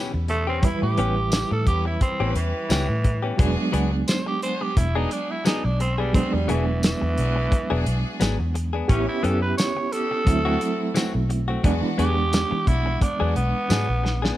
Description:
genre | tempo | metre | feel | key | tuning
straight-eighth soul blues | 87 BPM | 4/4 | swing 55% on 16ths | unclear | A4 = 440 Hz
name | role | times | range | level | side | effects
overdriven reed electric piano | accompaniment | 0.0-14.4 s | B2 to B4 | -28 LUFS | right 3 dB | fast tremolo
rich chamber string section | sustained chords | 0.0-13.8 s | G#3 to B4 | -37 LUFS | left 2 dB | none
direct-recorded clean electric guitar | stabs | 0.0-14.4 s | E3 to G#4 | -29 LUFS | left 5 dB | none
vintage muted fingered electric bass | bass | 0.1-14.3 s | E1 to E3 | -24 LUFS | equal | none
growling tenor saxophone | second line | 0.3-14.4 s | E3 to C#5 | -27 LUFS | right 2 dB | none
warm soul drum kit | drums | 0.3-14.4 s | hi-hat, kick drum, snare drum, tambourine | -22 LUFS | equal | none
room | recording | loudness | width
little or no reverb | none | -20 LUFS | side -14 dB against mid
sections
0.0-14.4 A section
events
tenor saxophone solo 0.0-14.4; drum fill 14.0-14.4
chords
0.0 A9; 3.4 E9; 8.9 A9; 10.3 D9; 11.6 E9

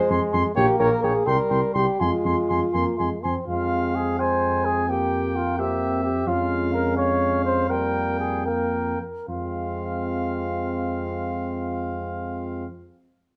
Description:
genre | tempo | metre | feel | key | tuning
classical, brass quintet | 70-88 BPM (dotted quarters) | 6/8 | rubato | F minor | A4 = 440 Hz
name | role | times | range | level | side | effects
clear trombone | accompaniment | 0.0-12.7 s | G3 to C4 | -32 LUFS | equal | none
warm French horn | accompaniment | 0.0-12.7 s | Bb3 to Bb4 | -30 LUFS | equal | none
clear trumpet | melody | 0.1-12.7 s | Db5 to C6 | -32 LUFS | equal | none
mellow flugelhorn | second line | 0.1-12.7 s | F4 to Ab5 | -30 LUFS | equal | none
dark tuba | bass | 0.1-12.7 s | Bb1 to F2 | -30 LUFS | equal | none
room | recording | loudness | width
moderate large studio reverb, RT60 1.1 s | none | -24 LUFS | mono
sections
0.0-3.5 A section; 3.5-9.3 B section; 9.3-12.6 C section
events
slowing down 5.6-9.3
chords
0.0 Fm; 0.6 Gdim/Bb; 1.3 C5; 2.0 Fm; 4.9 C7/F; 6.3 Bbm7/F (rootless); 7.7 Fsus24; 9.3 Fm

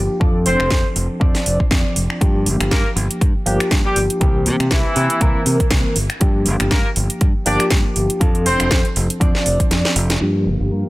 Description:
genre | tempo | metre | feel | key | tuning
filtered disco house | 120 BPM | 4/4 | swing 56% on 16ths | G dorian | A4 = 440 Hz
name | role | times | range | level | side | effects
bright reed electric piano | accompaniment | 0.0-10.9 s | E3 to D5 | -21 LUFS | equal | fast tremolo, phaser, sidechain pumping, low-pass filter
modern bright fingered electric bass | bass | 0.0-10.8 s | F1 to C3 | -20 LUFS | equal | sidechain pumping, low-pass filter
electronic kick drum | drums | 0.2-9.7 s | none | -17 LUFS | equal | none
bright horn section | melody | 0.5-10.9 s | E3 to D5 | -23 LUFS | equal | sidechain pumping, low-pass filter, tape echo
house drum kit | drums | 0.5-10.2 s | finger snaps, hi-hat, snare drum | -22 LUFS | equal | sidechain pumping on hats, low-pass filter on hats, low-pass filter on snare, low-pass filter on room
bright chamber string section | sustained chords | 10.2-10.9 s | F4 to G5 | -39 LUFS | right 2 dB | none
room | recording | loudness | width
little or no reverb | none | -14 LUFS | side -19 dB against mid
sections
0.0-10.2 A section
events
kick drops out 9.7-10.2; drum fill 9.7-10.2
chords
0.2 F6; 2.2 Gm7; 4.2 C7; 6.0 Gm7; 8.2 F6; 10.2 Gm7

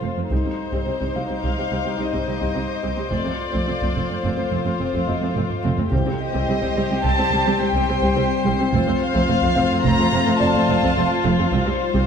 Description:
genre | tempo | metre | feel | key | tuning
cinematic, suspense film score | 107 BPM | 5/4 | straight | C dorian | A4 = 444 Hz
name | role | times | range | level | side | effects
warm chamber violin section | second line | 0.0-12.1 s | Eb4 to C5 | -25 LUFS | left 3 dB | none
dark chamber viola section | accompaniment | 0.0-12.0 s | G3 to C4 | -26 LUFS | right 1 dB | none
glass harmonica | sustained chords | 0.0-12.1 s | Eb4 to G5 | -32 LUFS | left 2 dB | none
dark chamber cello section | bass | 0.0-12.0 s | C2 to F2 | -27 LUFS | right 3 dB | none
dark chamber double bass section | bass | 0.0-11.6 s | F1 to C2 | -28 LUFS | right 4 dB | none
felt-muted upright piano | texture | 0.0-12.1 s | D5 to F5 | -31 LUFS | equal | none
dark French horn section | sustained chords | 0.3-12.1 s | G3 to Eb4 | -28 LUFS | left 4 dB | none
taiko ensemble | drums | 0.3-12.1 s | none | -28 LUFS | equal | none
warm chamber violin section | texture | 0.3-11.2 s | C6 to C7 | -37 LUFS | left 3 dB | none
warm chamber violin section | melody | 0.6-12.1 s | C5 to Bb5 | -26 LUFS | left 2 dB | none
timpani | percussion | 5.9-6.7 s | C3 | -28 LUFS | right 3 dB | none
room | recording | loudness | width
moderate scoring stage reverb, RT60 1.7 s | dark, warm production | -18 LUFS | side -7 dB against mid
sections
0.0-12.1 A section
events
drum fill 5.2-5.9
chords
0.3 Cm; 3.1 F; 5.9 Cm; 8.7 F; 11.5 Cm

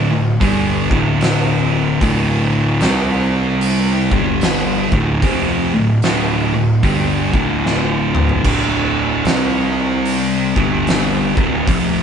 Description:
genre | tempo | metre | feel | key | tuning
stoner and doom metal | 74 BPM | 4/4 | swing 62% on 8ths | D minor | A4 = 440 Hz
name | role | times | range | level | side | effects
fuzz guitar | riff | 0.0-12.0 s | D2 to C4 | -15 LUFS | equal | distortion
fuzz picked electric bass | bass | 0.0-12.0 s | D1 to C2 | -25 LUFS | equal | overdrive, tube saturation
oversized low-tuned drum kit | drums | 0.4-11.9 s | crash cymbal, hi-hat, kick drum, snare drum, toms | -20 LUFS | equal | none
room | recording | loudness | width
moderate small room reverb, RT60 0.5 s | band playing live in one room, nothing above 10.7 kHz | -14 LUFS | side -7 dB against mid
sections
0.0-12.0 A section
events
drum fill 7.6-8.5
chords
0.0 D5; 2.8 C5; 4.0 G5; 4.8 Dm; 9.3 C5; 10.5 G5; 11.3 Dm

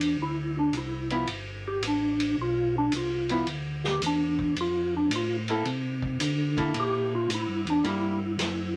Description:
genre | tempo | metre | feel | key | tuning
soul jazz organ trio | 110 BPM | 4/4 | swing 68% on 8ths | unclear | A4 = 440 Hz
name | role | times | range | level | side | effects
percussive tonewheel organ | melody | 0.0-8.7 s | D4 to G4 | -29 LUFS | equal | slow rotary speaker, chorus vibrato
mellow tonewheel organ | bass | 0.0-8.8 s | G1 to D3 | -34 LUFS | equal | overdrive, chorus vibrato, slow rotary speaker
vintage drum kit | drums | 0.0-8.6 s | hi-hat, kick drum, ride cymbal, snare drum | -37 LUFS | equal | none
archtop guitar, miked and amplified | accompaniment | 1.1-8.2 s | F3 to A4 | -31 LUFS | equal | none
room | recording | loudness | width
wet studio ambience, RT60 0.5 s | none | -28 LUFS | mono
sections
0.0-8.8 A section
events
tonewheel organ solo 0.0-8.8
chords
0.0 Cadd9; 1.3 G13; 5.7 C13; 7.8 C#dim7 (rootless)

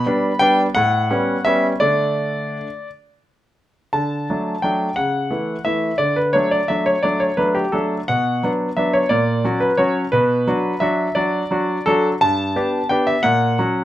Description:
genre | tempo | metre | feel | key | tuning
classical-period piano sonatina | 58 BPM (dotted quarters) | 6/8 | rubato | D major | A4 = 437 Hz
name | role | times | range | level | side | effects
clear concert grand piano | solo | 0.0-13.8 s | G2 to B5 | -16 LUFS | equal | none
room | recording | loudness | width
light reverb | none | -16 LUFS | side -13 dB against mid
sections
0.0-3.9 A section; 3.9-13.8 A section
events
none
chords
0.0 G; 0.7 A9; 1.8 D5; 3.9 D; 5.0 A/C#; 6.0 D; 8.1 Bm; 9.1 F#/A#; 10.1 Bm; 12.2 G; 13.2 F#/A#

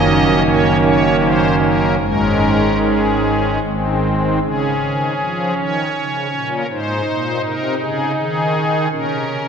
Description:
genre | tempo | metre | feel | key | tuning
classical, chorale-style piece for pipe organ | 74-83 BPM | 3/4 | rubato | unclear | A4 = 441 Hz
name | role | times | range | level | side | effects
pipe organ, strings celeste | solo | 0.0-9.5 s | Gb1 to Eb5 | -14 LUFS | right 1 dB | none
room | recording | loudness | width
wet church reverb, RT60 3.0 s | none | -15 LUFS | side -7 dB against mid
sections
0.0-4.4 A section; 4.4-9.5 B section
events
none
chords
0.0 Ebm7/Gb; 2.0 Absus4; 3.6 Ab; 4.4 Db; 6.7 Ab; 8.9 Bbm

